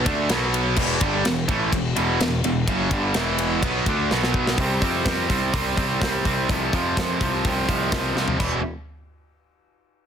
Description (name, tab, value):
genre	heavy metal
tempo	126 BPM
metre	4/4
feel	straight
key	E phrygian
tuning	A4 = 440 Hz
part	tight distorted guitar	riff	0.0-8.6 s	E2 to D4	-22 LUFS	right 1 dB	distortion
part	fuzz picked electric bass	bass	0.0-8.6 s	E1 to F2	-27 LUFS	equal	overdrive
part	tight metal drum kit	drums	0.1-8.5 s	crash cymbal, hi-hat, kick drum, ride cymbal, snare drum, toms	-25 LUFS	equal	soft clipping on kick
room	light reverb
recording	dense, heavily limited modern master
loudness	-20 LUFS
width	side -8 dB against mid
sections	0.0-4.6 A section; 4.6-8.4 B section; 8.4-10.1 C section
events	drum fill 4.1-4.6, 8.2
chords	0.3 B5; 0.8 Em; 4.1 B5; 4.6 C5; 6.5 F5/C; 8.4 E5